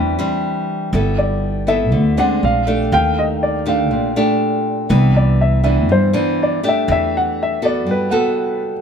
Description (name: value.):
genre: bossa nova.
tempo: 121 BPM.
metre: 4/4.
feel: straight.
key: G major.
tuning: A4 = 440 Hz.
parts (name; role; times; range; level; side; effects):
warm baby grand piano; melody; 0.0-8.6 s; B4 to B5; -20 LUFS; left 2 dB; none.
nylon-string guitar; accompaniment; 0.0-8.8 s; G2 to A4; -18 LUFS; equal; none.
upright bass; bass; 0.0-8.1 s; G1 to G2; -17 LUFS; equal; none.
warm grand piano; accompaniment; 2.2-8.8 s; D5 to F#5; -28 LUFS; right 5 dB; none.
room: little or no reverb.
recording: none.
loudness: -14 LUFS.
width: side -7 dB against mid.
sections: 0.0-8.8 A section.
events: none.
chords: 0.0 Am11 (rootless); 0.9 G69; 2.4 Bb9; 2.9 Ebmaj9#11; 4.9 Cmaj9; 6.9 Em11; 7.9 Gmaj9.